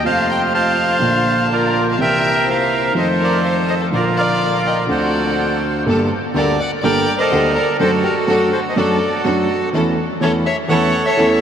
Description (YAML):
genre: tango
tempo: 124 BPM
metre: 4/4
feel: rubato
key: Bb major, G harmonic minor from 5.9 s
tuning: A4 = 441 Hz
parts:
  - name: bandoneon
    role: melody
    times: 0.0-11.4 s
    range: F4 to Bb5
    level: -18 LUFS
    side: right 1 dB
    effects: diffuse ambient delay
  - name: dark violin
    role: second line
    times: 0.0-11.4 s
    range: F#4 to G5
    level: -23 LUFS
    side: left 4 dB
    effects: none
  - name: dark grand piano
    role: accompaniment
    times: 0.0-11.4 s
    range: G1 to A4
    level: -19 LUFS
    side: equal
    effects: none
  - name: clear symphonic string section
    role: stabs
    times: 0.1-11.4 s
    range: E3 to A4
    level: -25 LUFS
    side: equal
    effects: none
room: wet huge ambient reverb, RT60 5.2 s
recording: dreamy mix soaked in reverb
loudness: -14 LUFS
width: side -8 dB against mid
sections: 0.0-5.9 A section; 5.9-11.4 B section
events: none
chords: 0.1 F; 1.0 Bb; 2.0 C7; 3.0 F7; 3.9 Bb; 4.9 D7; 5.9 Gmadd9; 7.8 D/F#; 9.7 A/E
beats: | 0.05 0.54 1.02 1.50 | 1.99 2.47 2.95 3.44 | 3.92 4.40 4.89 5.38 | 5.87 6.35 6.84 7.32 | 7.80 8.29 8.77 9.25 | 9.73 10.21 10.70 11.18